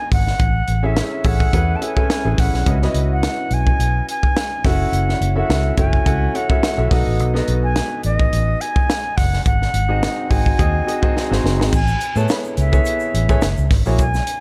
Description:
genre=polished 1980s jazz-funk pop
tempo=106 BPM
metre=4/4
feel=swing 54% on 16ths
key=unclear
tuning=A4 = 436 Hz
part: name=concert flute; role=melody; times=0.0-14.4 s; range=D#5 to B5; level=-26 LUFS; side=equal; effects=digital delay
part: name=clear baby grand piano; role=accompaniment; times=0.0-14.0 s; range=A#3 to F#5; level=-26 LUFS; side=equal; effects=lush chorus
part: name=vintage muted fingered electric bass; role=bass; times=0.1-14.2 s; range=F#1 to A2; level=-21 LUFS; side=equal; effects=none
part: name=crisp fusion drum kit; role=drums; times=0.1-14.4 s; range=crash cymbal, hi-hat, kick drum, snare drum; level=-22 LUFS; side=equal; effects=none
part: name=egg shaker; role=percussion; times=11.7-14.4 s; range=none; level=-43 LUFS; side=equal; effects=none
room=small room ambience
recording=dark, warm production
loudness=-18 LUFS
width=mono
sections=0.0-11.7 A section; 11.7-14.4 B section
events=drum fill 11.2-11.7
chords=0.4 Amaj7; 2.7 C#m11; 4.6 F#m7; 6.9 B7; 9.5 G#7; 11.7 Amaj9; 13.4 F#9

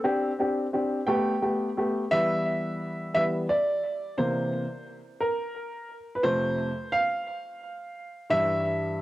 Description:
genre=pop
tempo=58 BPM (dotted quarters)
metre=6/8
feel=straight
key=unclear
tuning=A4 = 440 Hz
part: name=warm baby grand piano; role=solo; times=0.0-9.0 s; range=F2 to G5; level=-25 LUFS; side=equal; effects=cassette tape, tape echo
room=light reverb, studio reverb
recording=home recording on cassette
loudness=-25 LUFS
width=side -16 dB against mid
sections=0.0-2.1 A section; 2.1-9.0 B section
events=grand piano solo 2.1-9.0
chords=0.1 Gsus4; 1.1 Gadd9; 2.1 Em; 4.2 C7; 6.2 F; 8.3 Em/G

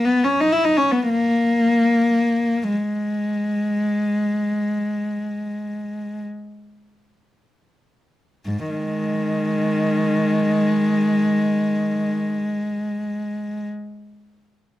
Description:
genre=classical, free, expressive piece for unaccompanied cello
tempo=22-42 BPM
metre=4/4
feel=rubato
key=G# minor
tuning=A4 = 441 Hz
part: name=warm cello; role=solo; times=0.0-13.7 s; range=G#2 to E4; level=-19 LUFS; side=left 1 dB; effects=none
room=light reverb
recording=none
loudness=-19 LUFS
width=side -15 dB against mid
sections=0.0-8.5 A section; 8.5-14.8 B section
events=slowing down 0.0-8.5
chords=none

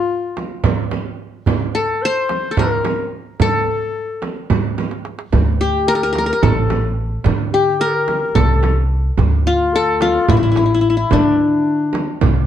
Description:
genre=Turkish makam ensemble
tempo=218 BPM (eighths)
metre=7/8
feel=straight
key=D makam nihavent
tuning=A4 = 443 Hz
part: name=qanun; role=melody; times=0.0-12.5 s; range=D4 to C5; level=-18 LUFS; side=left 3 dB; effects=plate reverb
part: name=dark clarinet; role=second line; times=0.0-12.5 s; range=D4 to C5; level=-22 LUFS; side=left 3 dB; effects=none
part: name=darbuka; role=percussion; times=0.4-12.4 s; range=none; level=-21 LUFS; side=right 6 dB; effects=none
part: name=frame drum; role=percussion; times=0.4-12.3 s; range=none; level=-22 LUFS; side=right 4 dB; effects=none
part: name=upright bass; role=bass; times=5.3-12.5 s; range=A1 to D3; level=-18 LUFS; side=equal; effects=none
room=light reverb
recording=dark, warm production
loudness=-14 LUFS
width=side -10 dB against mid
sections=0.0-12.5 A section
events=drum fill 4.8-5.3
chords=none

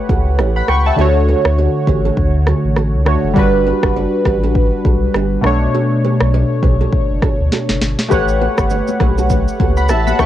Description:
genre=afrobeats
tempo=101 BPM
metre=4/4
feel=swing 58% on 16ths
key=D major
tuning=A4 = 440 Hz
part: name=warm analog keys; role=accompaniment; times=0.0-10.3 s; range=B2 to C#6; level=-16 LUFS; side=equal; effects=chorus, phaser, cassette tape
part: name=nylon-string guitar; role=riff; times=0.1-10.1 s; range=D4 to D5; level=-25 LUFS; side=right 9 dB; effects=cassette tape, analog delay
part: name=saturated sub bass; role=bass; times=0.1-10.3 s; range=F#1 to D2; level=-17 LUFS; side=equal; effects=none
part: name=afro-pop drum kit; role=drums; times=0.1-10.3 s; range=kick drum, rim click, shaker, snare drum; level=-17 LUFS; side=equal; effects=none
part: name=congas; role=percussion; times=8.4-10.3 s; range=none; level=-24 LUFS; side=left 14 dB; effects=none
room=little or no reverb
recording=home recording on cassette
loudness=-12 LUFS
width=side -12 dB against mid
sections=0.0-10.3 A section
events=break 0.0-8.1; drum fill 7.5-8.1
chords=0.0 A13; 1.0 Dmaj7; 3.4 Gmaj7; 5.4 Bm9; 8.1 A13

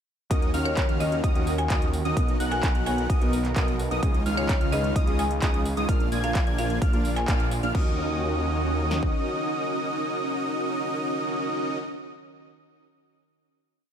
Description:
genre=EDM, festival progressive house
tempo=129 BPM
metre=4/4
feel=straight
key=Eb minor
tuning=A4 = 438 Hz
part: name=warm baby grand piano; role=accompaniment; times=0.3-11.8 s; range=Bb2 to Eb5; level=-34 LUFS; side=right 1 dB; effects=vintage 12-bit sampler grit, sidechain pumping, digital delay
part: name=lush unison pad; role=sustained chords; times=0.3-11.8 s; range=D3 to A#4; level=-38 LUFS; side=right 1 dB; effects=none
part: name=wide unison lead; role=arpeggios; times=0.3-11.8 s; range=Eb6 to Ab6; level=-32 LUFS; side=right 1 dB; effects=sidechain pumping, digital delay
part: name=dense compressed supersaw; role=riff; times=0.3-11.8 s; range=Ab3 to Ab5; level=-30 LUFS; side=equal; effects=sidechain pumping, digital delay
part: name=detuned saw bass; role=bass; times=0.3-9.1 s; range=Bb1 to Eb2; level=-29 LUFS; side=equal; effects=sidechain pumping
part: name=big-room dance drum kit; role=drums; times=0.3-9.1 s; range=kick drum, snare drum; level=-24 LUFS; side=equal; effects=small room ambience
part: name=big-room dance drum kit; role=drums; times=0.3-7.8 s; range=crash cymbal, handclaps, hi-hat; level=-35 LUFS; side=right 1 dB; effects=small room ambience
part: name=marimba with hard mallets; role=melody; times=0.7-7.6 s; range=Db5 to Ab5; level=-32 LUFS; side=left 2 dB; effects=digital delay
room=light reverb, digital ambience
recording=none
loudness=-23 LUFS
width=side -8 dB against mid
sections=0.3-7.7 drop; 7.7-11.5 final chord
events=drop 0.3-7.7; band accent 7.3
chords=0.3 Ebm7; 2.2 Bmaj7; 4.0 Dbadd9; 5.9 Bb; 7.7 Ebm7

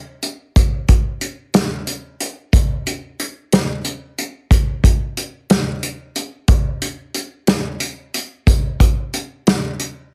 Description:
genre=rock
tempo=61 BPM (dotted quarters)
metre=6/8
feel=straight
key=none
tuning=none
part: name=unplugged drum kit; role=drums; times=0.2-9.9 s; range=hi-hat, kick drum, snare drum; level=-18 LUFS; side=equal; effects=none
room=light reverb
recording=heavily compressed radio sound, multiband compression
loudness=-19 LUFS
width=mono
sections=0.0-10.1 A section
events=none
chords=none

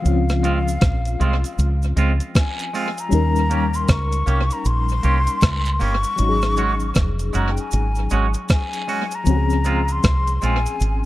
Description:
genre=lovers rock reggae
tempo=78 BPM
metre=4/4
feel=swing 62% on 16ths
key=Db major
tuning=A4 = 441 Hz
part: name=breathy concert flute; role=melody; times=0.0-11.1 s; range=F5 to Db6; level=-25 LUFS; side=left 2 dB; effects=tape echo
part: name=FM electric piano with tremolo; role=accompaniment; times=0.0-11.1 s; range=F3 to Bb4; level=-26 LUFS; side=left 5 dB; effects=phaser
part: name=deep dub fingered electric bass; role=bass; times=0.1-11.1 s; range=F1 to Eb2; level=-19 LUFS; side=equal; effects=none
part: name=crisp 8-bit digital drum machine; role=drums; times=0.1-11.0 s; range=hi-hat, kick drum, rim click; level=-20 LUFS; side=equal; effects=overdrive, tape echo
part: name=cabasa and guiro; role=percussion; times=0.1-11.0 s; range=none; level=-36 LUFS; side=right 5 dB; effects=none
part: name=twangy electric guitar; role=stabs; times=0.4-10.6 s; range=Ab3 to G4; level=-27 LUFS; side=right 5 dB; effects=none
room=light reverb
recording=dark, warm production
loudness=-17 LUFS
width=side -16 dB against mid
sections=0.0-11.1 A section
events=none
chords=0.0 Dbmaj7; 3.1 Eb7; 6.2 Ab7sus4; 9.3 Dbmaj7

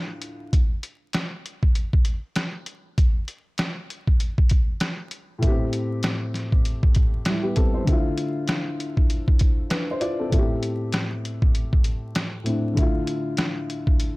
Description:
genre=hip hop, boom-bap hip-hop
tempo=98 BPM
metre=4/4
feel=swing 60% on 16ths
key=D minor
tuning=A4 = 440 Hz
part: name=dark grand piano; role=accompaniment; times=0.0-0.6, 5.4-14.2 s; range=A2 to D5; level=-26 LUFS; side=left 1 dB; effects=cassette tape, low-pass filter
part: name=trip hop sampler-style drum kit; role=drums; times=0.2-14.2 s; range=hi-hat, kick drum, rim click, snare drum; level=-21 LUFS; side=equal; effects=none
room=little or no reverb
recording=vinyl crackle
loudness=-21 LUFS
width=side -22 dB against mid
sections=0.0-7.9 A section; 7.9-14.2 B section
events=filter sweep on grand piano 0.0-7.9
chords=0.0 Dmadd9; 0.5 N.C.; 5.4 Am7; 7.9 Dmadd9; 10.3 Am7; 12.8 Dmadd9

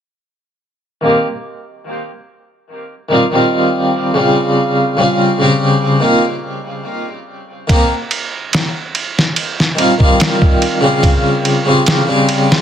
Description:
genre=trip hop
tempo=72 BPM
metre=4/4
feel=swing 53% on 16ths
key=unclear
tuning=A4 = 440 Hz
part: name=harpsichord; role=accompaniment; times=1.0-12.6 s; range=Db3 to G4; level=-13 LUFS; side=equal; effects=tremolo, low-pass filter, tape echo
part: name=trip hop sampler-style drum kit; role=drums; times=7.7-12.6 s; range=kick drum, ride cymbal, snare drum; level=-14 LUFS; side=equal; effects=none
room=light reverb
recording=dense, heavily limited modern master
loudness=-11 LUFS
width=side -9 dB against mid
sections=1.0-12.6 A section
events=none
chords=1.0 Cm7; 2.7 Dbmaj9#11; 4.4 Dbmaj7#11; 6.0 F7sus4; 7.7 Cm7; 9.4 Dbmaj9#11; 11.0 Dbmaj7#11

